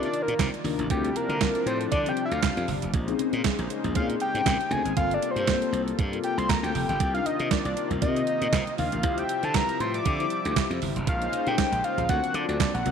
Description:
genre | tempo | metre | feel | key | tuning
early-eighties boogie funk | 118 BPM | 4/4 | swing 56% on 16ths | unclear | A4 = 440 Hz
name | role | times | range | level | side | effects
fat analog lead | melody | 0.0-12.9 s | G4 to D6 | -28 LUFS | equal | slapback echo
mellow synth brass | accompaniment | 0.0-12.9 s | Bb3 to C5 | -31 LUFS | left 11 dB | chorus
brassy analog pad | sustained chords | 0.0-12.9 s | C3 to E5 | -36 LUFS | right 2 dB | chorus
glassy slap bass | bass | 0.0-12.9 s | F1 to D3 | -30 LUFS | equal | none
clean 12-bit digital drum machine | drums | 0.0-12.9 s | handclaps, hi-hat, kick drum, snare drum | -28 LUFS | right 5 dB | none
congas | percussion | 0.4-12.9 s | none | -37 LUFS | right 7 dB | none
room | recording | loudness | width
moderate echo chamber reverb, RT60 1.6 s, digital ambience | 1960s-style stereo with parts hard left and right | -23 LUFS | side -7 dB against mid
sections
0.0-12.9 A section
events
analog synth lead solo 0.0-12.9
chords
0.0 Cm11; 0.9 Dm11; 2.9 Bbm11; 5.0 Gm11; 7.0 Cm11; 9.0 Dm11; 11.1 Bbm11; 12.1 D7alt

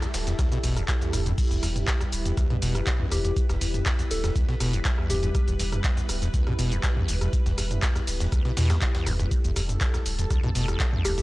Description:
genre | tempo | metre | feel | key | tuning
acid house | 121 BPM | 4/4 | straight | E minor | A4 = 440 Hz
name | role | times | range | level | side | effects
string machine, full ensemble | sustained chords | 0.0-11.2 s | G3 to B4 | -34 LUFS | equal | phaser, ensemble chorus, sidechain pumping
acid bass, saw | riff | 0.0-11.2 s | D2 to B2 | -29 LUFS | equal | overdrive, wide subtle chorus, sidechain pumping
breakbeat sampler-style drum kit | drums | 0.0-11.2 s | hi-hat, snare drum | -42 LUFS | equal | none
punchy analog drum machine | drums | 0.0-11.2 s | crash cymbal, handclaps, hi-hat, rim click, shaker, toms | -30 LUFS | equal | none
warm sub bass | bass | 0.1-11.2 s | D1 to E2 | -29 LUFS | equal | sidechain pumping
electronic kick drum | drums | 0.4-10.9 s | none | -26 LUFS | equal | overdrive
soft struck synth lead | melody | 3.1-5.8, 11.1-11.2 s | G4 to A4 | -33 LUFS | left 1 dB | chorus, cassette tape, tape echo
room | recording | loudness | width
digital ambience | dry, gritty hardware recording, cassette tape | -23 LUFS | side -19 dB against mid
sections
0.0-11.2 A section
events
none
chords
0.0 Em

